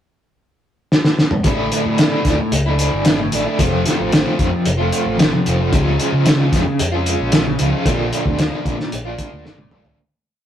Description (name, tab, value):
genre	psychedelic rock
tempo	112 BPM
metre	4/4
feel	straight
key	unclear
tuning	A4 = 442 Hz
part	cloth-damped thuddy drum kit	drums	0.9-10.0 s	hi-hat, kick drum, snare drum, toms	-17 LUFS	equal	none
part	crunchy overdriven guitar	riff	1.4-10.0 s	F2 to F4	-19 LUFS	equal	tremolo
part	fingered electric bass	bass	1.4-10.0 s	F1 to C#3	-21 LUFS	equal	none
room	light reverb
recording	rough rehearsal-room recording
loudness	-14 LUFS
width	side -10 dB against mid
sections	0.0-1.4 pickup bar; 1.4-10.0 verse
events	drum fill 0.9-1.4, 9.5-10.0; fade-out 7.9-10.0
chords	0.0 N.C.; 1.4 Asus4; 3.6 F; 5.7 C#; 7.9 Bb